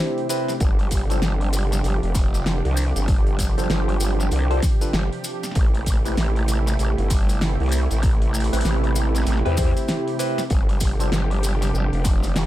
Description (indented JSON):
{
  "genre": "glitch hop",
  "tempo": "97 BPM",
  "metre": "4/4",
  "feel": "swing 62% on 16ths",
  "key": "unclear",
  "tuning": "A4 = 440 Hz",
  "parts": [
    { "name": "warm analog pad", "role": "sustained chords", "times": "0.0-12.5 s", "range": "C3 to G4", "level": "-28 LUFS", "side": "right 2 dB", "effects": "chorus, vintage 12-bit sampler grit, sidechain pumping" },
    { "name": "barky tine electric piano", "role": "stabs", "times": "0.0-11.1 s", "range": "C4 to C5", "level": "-28 LUFS", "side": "equal", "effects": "overdrive, phaser, sidechain pumping, dub echo" },
    { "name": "pop drum kit", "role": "drums", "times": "0.2-12.5 s", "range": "hi-hat, snare drum", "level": "-29 LUFS", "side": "equal", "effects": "none" },
    { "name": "maracas", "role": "percussion", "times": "0.3-12.5 s", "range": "none", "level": "-34 LUFS", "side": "left 2 dB", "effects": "none" },
    { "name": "growl bass", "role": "bass", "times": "0.6-12.5 s", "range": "F1 to E2", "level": "-21 LUFS", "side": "equal", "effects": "chorus" },
    { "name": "electronic kick drum", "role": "drums", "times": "0.6-12.2 s", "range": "none", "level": "-20 LUFS", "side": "equal", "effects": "none" }
  ],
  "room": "digital ambience",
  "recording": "none",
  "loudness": "-19 LUFS",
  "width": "side -14 dB against mid",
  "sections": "0.0-12.5 A section",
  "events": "none",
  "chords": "0.0 Am7; 0.6 G7sus4; 5.6 Am7; 10.5 G7sus4",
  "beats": "| 0.61 1.23 1.84 2.46 | 3.08 3.70 4.32 4.94 | 5.55 6.17 6.79 7.41 | 8.03 8.65 9.27 9.88 | 10.50 11.12 11.74 12.36"
}